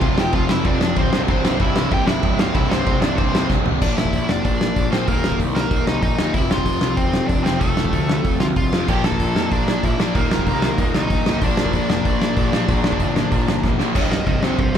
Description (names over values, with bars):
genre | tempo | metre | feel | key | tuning
punk rock | 189 BPM | 4/4 | straight | unclear | A4 = 439 Hz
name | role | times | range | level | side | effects
nasal lead guitar with a parked wah | melody | 0.0-14.8 s | A3 to A5 | -25 LUFS | equal | overdrive
cranked stack guitar | riff | 0.0-3.7, 8.9-14.8 s | C2 to Bb3 | -28 LUFS | right 1 dB | overdrive
crunchy overdriven guitar | riff | 0.0-14.8 s | C2 to Bb3 | -24 LUFS | left 8 dB | none
distorted electric guitar | riff | 0.0-14.8 s | C2 to Bb3 | -27 LUFS | right 8 dB | overdrive
fuzz picked electric bass | bass | 0.0-14.8 s | C1 to F2 | -25 LUFS | right 1 dB | overdrive
loose indie drum kit | drums | 0.0-14.8 s | crash cymbal, hi-hat, kick drum, ride cymbal, snare drum, toms | -20 LUFS | right 1 dB | none
room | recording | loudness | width
little or no reverb | band playing live in one room | -16 LUFS | side -8 dB against mid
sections
0.0-3.8 A section; 3.8-14.0 B section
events
drum fill 3.5-3.8, 13.6-14.0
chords
0.0 F5; 1.1 C; 3.8 Bb; 5.1 Eb5; 6.4 F; 8.9 Bb; 10.2 Eb5; 11.4 Bb; 14.0 C5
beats
| 0.03 0.34 0.66 0.98 | 1.29 1.61 1.92 2.24 | 2.56 2.87 3.19 3.50 | 3.82 4.13 4.45 4.77 | 5.08 5.40 5.72 6.04 | 6.35 6.67 6.99 7.30 | 7.62 7.94 8.25 8.57 | 8.89 9.20 9.52 9.84 | 10.15 10.47 10.79 11.11 | 11.42 11.74 12.05 12.37 | 12.69 13.01 13.32 13.64 | 13.96 14.27 14.59